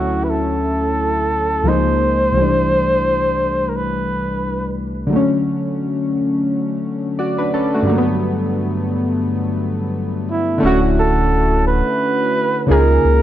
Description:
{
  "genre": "hip hop",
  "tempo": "87 BPM",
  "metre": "4/4",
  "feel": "swing 57% on 16ths",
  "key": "D major",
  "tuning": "A4 = 440 Hz",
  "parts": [
    { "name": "warm flugelhorn", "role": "melody", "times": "0.0-4.8, 10.3-13.2 s", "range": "E4 to C5", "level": "-18 LUFS", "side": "right 1 dB", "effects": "low-pass filter, plate reverb" },
    { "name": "warm analog keys", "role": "accompaniment", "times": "0.0-13.2 s", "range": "C2 to D5", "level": "-18 LUFS", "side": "left 1 dB", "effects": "chorus, low-pass filter, plate reverb" },
    { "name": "sub bass with octave", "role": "bass", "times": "10.6-13.2 s", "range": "D1 to C#2", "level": "-16 LUFS", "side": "equal", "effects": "none" }
  ],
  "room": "wet studio reverb, RT60 0.6 s",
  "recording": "dark, warm production",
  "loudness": "-15 LUFS",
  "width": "side -12 dB against mid",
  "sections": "0.0-10.6 A section; 10.6-13.2 B section",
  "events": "none",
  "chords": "0.0 Dmaj7; 1.7 C#69; 2.4 C69; 5.1 Dmaj7; 7.9 Gmaj7; 10.6 Dmaj7; 12.7 C#69"
}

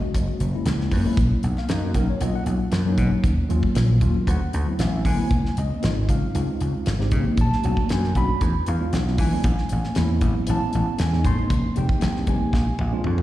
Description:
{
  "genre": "electric jazz fusion",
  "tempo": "116 BPM",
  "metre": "4/4",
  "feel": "straight",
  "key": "unclear",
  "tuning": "A4 = 439 Hz",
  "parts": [
    { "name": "mellow tine electric piano", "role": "accompaniment", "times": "0.0-13.2 s", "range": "F#3 to C6", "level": "-26 LUFS", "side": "equal", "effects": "medium stereo tremolo, plate reverb, slapback echo" },
    { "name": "vintage slap bass", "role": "bass", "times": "0.1-13.2 s", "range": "F1 to E3", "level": "-22 LUFS", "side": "equal", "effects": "none" },
    { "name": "damped 70s drum kit", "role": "drums", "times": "0.1-13.2 s", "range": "hi-hat, kick drum, snare drum, toms", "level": "-25 LUFS", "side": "equal", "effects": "none" },
    { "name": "congas", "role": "percussion", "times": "0.9-12.4 s", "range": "none", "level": "-30 LUFS", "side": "left 2 dB", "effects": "slapback echo" }
  ],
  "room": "little or no reverb",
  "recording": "live gig heard through the venue's PA, recital hall reverb",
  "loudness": "-19 LUFS",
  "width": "side -14 dB against mid",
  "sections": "0.0-13.2 A section",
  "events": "drum fill 12.5-13.2",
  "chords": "0.0 Gb7; 1.2 Bmaj9; 3.2 Ebm9; 4.3 D13; 5.3 Dbmaj9; 7.4 Bm7; 8.4 E7b9; 9.4 Amaj9; 11.5 Fm9; 12.5 Bb7"
}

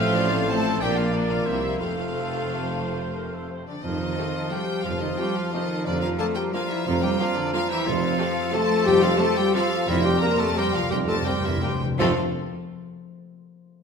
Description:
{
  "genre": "classical, orchestral ballroom waltz",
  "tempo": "160-201 BPM",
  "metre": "3/4",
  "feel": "rubato",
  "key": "F major",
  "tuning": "A4 = 439 Hz",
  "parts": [
    { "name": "rich symphonic violin section", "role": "melody", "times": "0.0-12.2 s", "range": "D5 to Bb5", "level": "-31 LUFS", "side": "left 4 dB", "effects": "none" },
    { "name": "clear studio violin section", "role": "second line", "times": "0.0-12.2 s", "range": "A3 to D4", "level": "-35 LUFS", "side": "left 2 dB", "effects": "none" },
    { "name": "mellow clarinet", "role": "second line", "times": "0.0-12.1 s", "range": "D4 to E5", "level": "-33 LUFS", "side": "left 1 dB", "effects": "none" },
    { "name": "mellow flute section", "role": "second line", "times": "0.0-12.2 s", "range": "D5 to C6", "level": "-36 LUFS", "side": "right 2 dB", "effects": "none" },
    { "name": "warm oboe", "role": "second line", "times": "0.0-12.1 s", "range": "F4 to D5", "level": "-35 LUFS", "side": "right 1 dB", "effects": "none" },
    { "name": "dark bassoon", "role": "accompaniment", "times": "0.0-12.1 s", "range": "F3 to Bb3", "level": "-32 LUFS", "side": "right 1 dB", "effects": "none" },
    { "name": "rich symphonic viola section", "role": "accompaniment", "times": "0.0-12.2 s", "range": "C3 to Bb3", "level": "-33 LUFS", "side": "right 2 dB", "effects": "none" },
    { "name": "mellow French horn section", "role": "sustained chords", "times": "0.0-12.1 s", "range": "C4 to Bb4", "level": "-28 LUFS", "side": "left 4 dB", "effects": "none" },
    { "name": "concert harp", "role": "arpeggios", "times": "0.0-12.2 s", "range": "A2 to Bb5", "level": "-33 LUFS", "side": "left 4 dB", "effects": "none" },
    { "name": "warm trumpet section", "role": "stabs", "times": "0.0-3.5 s", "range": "D4 to A4", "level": "-32 LUFS", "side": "left 1 dB", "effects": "none" },
    { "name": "clear symphonic double bass section", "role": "bass", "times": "0.0-12.2 s", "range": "F1 to F2", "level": "-32 LUFS", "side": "right 4 dB", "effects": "none" },
    { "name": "mellow tuba", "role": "bass", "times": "0.0-12.1 s", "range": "F1 to C2", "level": "-32 LUFS", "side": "right 4 dB", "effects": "none" },
    { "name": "rich symphonic cello section", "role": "bass", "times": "0.0-12.2 s", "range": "C2 to Bb3", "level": "-31 LUFS", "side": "right 4 dB", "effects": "none" },
    { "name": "timpani", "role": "percussion", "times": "9.9-12.2 s", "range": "F2", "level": "-30 LUFS", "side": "equal", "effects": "none" }
  ],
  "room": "wet scoring stage reverb, RT60 1.5 s",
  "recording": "none",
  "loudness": "-21 LUFS",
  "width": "side -6 dB against mid",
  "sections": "0.0-3.8 A section; 3.8-12.0 B section; 12.0-13.0 C section",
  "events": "timpani fill 9.9-12.0",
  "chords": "0.0 F/A; 0.8 Bb; 1.5 C7; 1.8 F; 3.8 F7; 5.9 Bb/F; 7.9 F; 9.9 C7/F; 12.0 F"
}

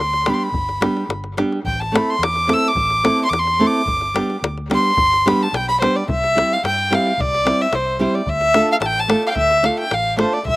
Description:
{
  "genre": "balkan folk, Balkan wedding band",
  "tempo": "109 BPM",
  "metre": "2/4",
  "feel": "straight",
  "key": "G major, C major from 6.1 s",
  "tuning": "A4 = 440 Hz",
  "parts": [
    { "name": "warm violin", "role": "melody", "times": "0.0-10.6 s", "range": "C5 to E6", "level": "-17 LUFS", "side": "equal", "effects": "none" },
    { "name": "vintage muted fingered electric bass", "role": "bass", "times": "0.0-10.6 s", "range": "G1 to G2", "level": "-28 LUFS", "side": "equal", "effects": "none" },
    { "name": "davul", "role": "percussion", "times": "0.1-10.6 s", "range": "none", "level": "-23 LUFS", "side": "left 3 dB", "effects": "none" },
    { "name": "nylon-string guitar", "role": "accompaniment", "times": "0.3-10.4 s", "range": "G3 to A4", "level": "-20 LUFS", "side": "right 2 dB", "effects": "slapback echo" }
  ],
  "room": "little or no reverb",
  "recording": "recorded outdoors, with no room sound",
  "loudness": "-15 LUFS",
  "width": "side -19 dB against mid",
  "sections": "0.0-6.1 A section; 6.1-10.6 B section",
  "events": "violin solo 0.0-6.1",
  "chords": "0.0 G; 1.7 Am; 3.9 G; 6.1 C; 8.3 Dm"
}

